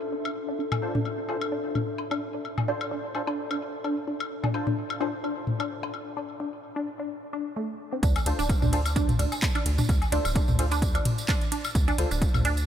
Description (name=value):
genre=minimal techno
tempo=129 BPM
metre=4/4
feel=swing 55% on 16ths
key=D minor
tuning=A4 = 440 Hz
part: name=warbly tape-like pad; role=texture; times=0.0-6.2 s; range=D4 to E5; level=-35 LUFS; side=left 2 dB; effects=chorus, built-in reverb, sidechain pumping
part: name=resonant blip pluck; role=riff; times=0.1-12.5 s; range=A3 to D4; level=-32 LUFS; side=right 1 dB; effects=phaser, sidechain pumping, analog delay
part: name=electronic woodblock and toms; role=percussion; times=0.3-12.6 s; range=none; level=-31 LUFS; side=left 2 dB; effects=tape echo
part: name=percussive organ stab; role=stabs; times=0.8-5.1, 8.3-12.1 s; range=D4 to C5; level=-37 LUFS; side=left 1 dB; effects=ensemble chorus, tape echo
part: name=rubbery square bass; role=bass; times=8.0-12.7 s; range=D1 to D2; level=-27 LUFS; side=equal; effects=tube saturation, sidechain pumping
part: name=electronic kick drum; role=drums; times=8.0-12.3 s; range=none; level=-26 LUFS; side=equal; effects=overdrive
part: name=house drum kit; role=drums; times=8.0-12.7 s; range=handclaps, hi-hat, ride cymbal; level=-35 LUFS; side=right 1 dB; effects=overdrive
part: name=tambourine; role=percussion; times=8.0-12.7 s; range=none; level=-39 LUFS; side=right 5 dB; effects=none
room=moderate cathedral reverb, RT60 5.5 s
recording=dreamy mix soaked in reverb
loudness=-25 LUFS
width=side -9 dB against mid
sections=0.0-8.0 A section; 8.0-12.7 B section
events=filter sweep on synth arpeggio sound 0.0-8.0; break 6.2-8.0; drop 8.0-12.7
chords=0.0 Dm7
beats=0.12 | 0.59 1.05 1.52 1.98 | 2.45 2.91 3.38 3.84 | 4.31 4.77 5.24 5.71 | 6.17 6.63 7.10 7.57 | 8.03 8.49 8.96 9.43 | 9.89 10.36 10.82 11.29 | 11.75 12.22